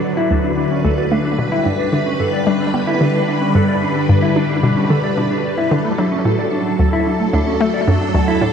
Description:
ambient, sequencer-driven space music; 111 BPM; 4/4; straight; D major; A4 = 440 Hz
phased string machine; sustained chords; 0.0-8.5 s; D3 to B4; -18 LUFS; equal; ensemble chorus, phaser
mellow electric guitar; arpeggios; 0.2-8.5 s; A3 to D5; -20 LUFS; equal; auto-pan, tape echo
hollow square pluck; riff; 0.3-8.5 s; D2 to D4; -19 LUFS; equal; chorus, tape echo
wet cathedral reverb, RT60 5.5 s; in a vast, echoing space; -14 LUFS; side -7 dB against mid
0.0-8.5 A section
0.0 D; 1.4 G; 5.7 D

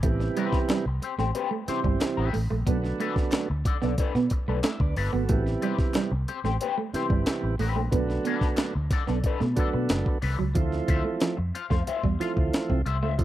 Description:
funk; 91 BPM; 4/4; straight; A minor; A4 = 440 Hz
semi-hollow electric guitar; riff; 0.0-13.2 s; F3 to C4; -31 LUFS; right 7 dB
tonewheel organ; stabs; 0.0-13.2 s; B2 to E4; -29 LUFS; right 4 dB; slow rotary speaker
vintage muted fingered electric bass; bass; 0.0-13.2 s; F#1 to B2; -27 LUFS; equal
breakbeat sampler-style drum kit; drums; 0.0-13.2 s; hi-hat, kick drum, snare drum; -26 LUFS; equal
electric guitar at the edge of break-up; accompaniment; 0.4-13.1 s; C4 to F5; -33 LUFS; left 8 dB; wah, spring reverb
group handclap; percussion; 0.7-10.1 s; -42 LUFS; left 5 dB
little or no reverb; dry, close 1970s-style studio recording; -24 LUFS; side -13 dB against mid
0.0-10.6 A section; 10.6-13.2 B section
0.0 Am9; 2.7 Bm7; 5.3 Am9; 7.9 Bm7; 10.6 Dm9

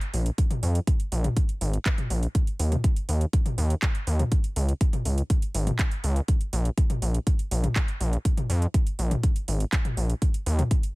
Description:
melodic techno; 122 BPM; 4/4; straight; Bb minor; A4 = 441 Hz
house drum kit; drums; 0.0-10.9 s; handclaps, hi-hat, toms; -31 LUFS; equal; sidechain pumping on hats, sidechain pumping on toms
gritty driven synth bass; bass; 0.1-10.6 s; Ab1 to F2; -23 LUFS; equal; sidechain pumping
electronic kick drum; drums; 0.4-10.8 s; -23 LUFS; equal
little or no reverb; -23 LUFS; side -23 dB against mid
0.0-10.9 A section

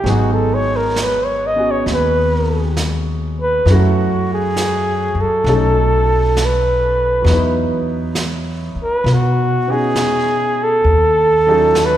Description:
jazz ballad; 67 BPM; 4/4; swing 68% on 8ths; A4 = 441 Hz
warm flugelhorn; melody; 0.0-12.0 s; F#4 to D#5; -16 LUFS; equal
clear baby grand piano; accompaniment; 0.0-12.0 s; F#3 to B4; -22 LUFS; equal
upright bass; bass; 0.0-12.0 s; G#1 to B2; -18 LUFS; equal
vintage brush drum kit; drums; 0.1-12.0 s; brushed snare drum, hi-hat, snare drum; -26 LUFS; right 2 dB
moderate concert hall reverb, RT60 2.0 s; recorded in a church or concert hall; -13 LUFS; side -12 dB against mid
0.0-12.0 A section
flugelhorn solo 0.0-12.0
0.0 G#m7; 3.7 F#m7; 5.5 B9; 7.3 Emaj9; 10.9 D#m7b5

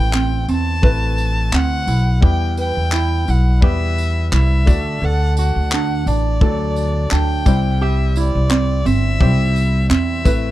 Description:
acoustic pop; 86 BPM; 4/4; swing 55% on 16ths; A4 = 440 Hz
rich violin; melody; 0.0-10.5 s; D5 to A5; -24 LUFS; left 1 dB
clear concert grand piano; accompaniment; 0.0-10.5 s; F#3 to D5; -27 LUFS; left 7 dB
ukulele; accompaniment; 0.0-10.5 s; C4 to B4; -23 LUFS; right 6 dB
upright bass; bass; 0.0-10.5 s; G1 to E2; -17 LUFS; equal
loose indie drum kit; drums; 0.1-10.4 s; handclaps, kick drum, tambourine; -17 LUFS; equal
little or no reverb; dry, close 1970s-style studio recording; -14 LUFS; side -15 dB against mid
0.0-10.5 A section
0.0 Amadd9; 2.2 Em; 4.7 D; 7.5 C

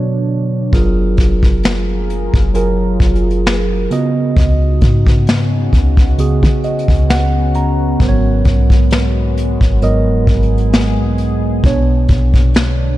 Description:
contemporary R&B; 66 BPM; 4/4; swing 54% on 16ths; F# major; A4 = 440 Hz
mellow tine electric piano; accompaniment; 0.0-13.0 s; G#2 to A#5; -17 LUFS; right 2 dB; phaser
deep dark ambient pad; sustained chords; 0.0-13.0 s; C#3 to A#4; -22 LUFS; left 2 dB; chorus, built-in reverb
clean 808-style bass; bass; 0.7-13.0 s; F#1 to C#3; -16 LUFS; equal
vintage brush drum kit; drums; 0.7-12.8 s; hi-hat, kick drum, snare drum; -14 LUFS; equal
small room ambience; dark, warm production; -11 LUFS; side -15 dB against mid
0.7-13.0 A section
break 0.0-0.7; tine electric piano fill 6.2-8.0
0.0 Bmadd9; 0.7 F#maj9; 3.9 C#9sus4; 8.0 G#m11; 11.6 Bmadd9

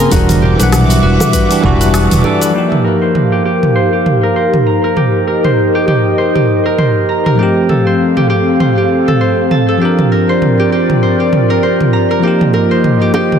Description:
sunset chillout; 99 BPM; 4/4; swing 57% on 16ths; A4 = 438 Hz
bell-like tine electric piano; accompaniment; 0.0-13.4 s; E3 to F#5; -16 LUFS; left 1 dB; auto-pan, tape echo
airy breathy pad; sustained chords; 0.0-13.4 s; G3 to D6; -15 LUFS; left 1 dB; chorus
Celtic harp; arpeggios; 0.0-13.4 s; F#4 to Bb5; -16 LUFS; right 2 dB; low-pass filter, tape echo
fretless electric bass; bass; 0.1-2.2 s; E1 to B1; -12 LUFS; left 1 dB; wide subtle chorus
deep house drum kit; drums; 0.1-13.4 s; hi-hat, rim click, shaker, toms; -16 LUFS; right 1 dB; soft clipping on snare
electronic kick drum; drums; 0.1-1.8 s; -16 LUFS; left 1 dB
bongos; percussion; 0.1-2.4, 12.5-13.3 s; -21 LUFS; right 2 dB
moderate lush hall reverb, RT60 2.4 s; dense, heavily limited modern master; -9 LUFS; side -8 dB against mid
0.0-2.5 A section; 2.5-13.4 B section
band accent 1.9-2.2; filter sweep on analog synth pad 2.5-13.4
0.1 Em9; 2.5 F9sus4; 7.4 G9sus4; 9.8 C9sus4; 12.2 F9sus4

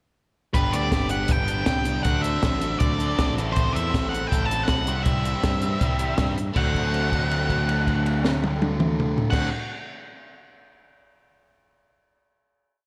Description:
indie rock; 160 BPM; 4/4; straight; D mixolydian; A4 = 440 Hz
octave-fuzz lead guitar; melody; 0.5-9.5 s; B4 to A5; -30 LUFS; equal; distortion, slapback echo
biting overdriven guitar; riff; 0.5-9.5 s; F#3 to A4; -34 LUFS; equal; analog chorus
fuzz guitar; riff; 0.5-9.5 s; G2 to G4; -33 LUFS; equal; distortion
growling picked electric bass; bass; 0.5-9.5 s; G1 to G2; -30 LUFS; equal; overdrive
compact cocktail drum kit; drums; 0.5-9.4 s; crash cymbal, hi-hat, kick drum, snare drum, toms; -28 LUFS; equal
moderate lush hall reverb, RT60 2.2 s; big arena sound; -23 LUFS; mono
0.6-6.6 pre-chorus; 6.6-9.5 final chord
held note 6.6-9.3
0.6 G; 2.1 D7; 3.4 Am; 4.9 C; 6.6 D7

